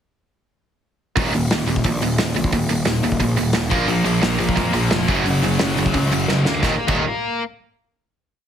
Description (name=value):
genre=punk rock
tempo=176 BPM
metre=4/4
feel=straight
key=unclear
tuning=A4 = 440 Hz
part: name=distorted electric guitar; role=riff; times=1.2-7.0 s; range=Eb2 to Bb3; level=-24 LUFS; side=left 8 dB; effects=overdrive
part: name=tight distorted guitar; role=riff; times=1.2-7.0 s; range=Eb2 to Bb3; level=-22 LUFS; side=right 8 dB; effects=distortion
part: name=fuzz picked electric bass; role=bass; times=1.2-7.0 s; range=Eb1 to F2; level=-24 LUFS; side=equal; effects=overdrive
part: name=loose indie drum kit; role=drums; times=1.2-7.0 s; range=crash cymbal, hi-hat, kick drum, snare drum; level=-23 LUFS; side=left 1 dB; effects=none
part: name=heavy high-gain guitar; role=riff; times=3.9-7.4 s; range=Eb2 to Bb3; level=-23 LUFS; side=left 1 dB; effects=distortion
room=little or no reverb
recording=heavily compressed radio sound, multiband compression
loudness=-17 LUFS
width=side -9 dB against mid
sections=1.2-6.6 verse; 6.6-8.0 final chord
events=drum fill 6.3-6.6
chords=1.2 Eb5; 3.7 Bb5; 5.1 Gb5; 6.6 Eb5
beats=| 1.17 1.51 1.85 2.19 | 2.53 2.87 3.21 3.55 | 3.89 4.24 4.58 4.92 | 5.26 5.60 5.95 6.29 | 6.63 6.97 7.31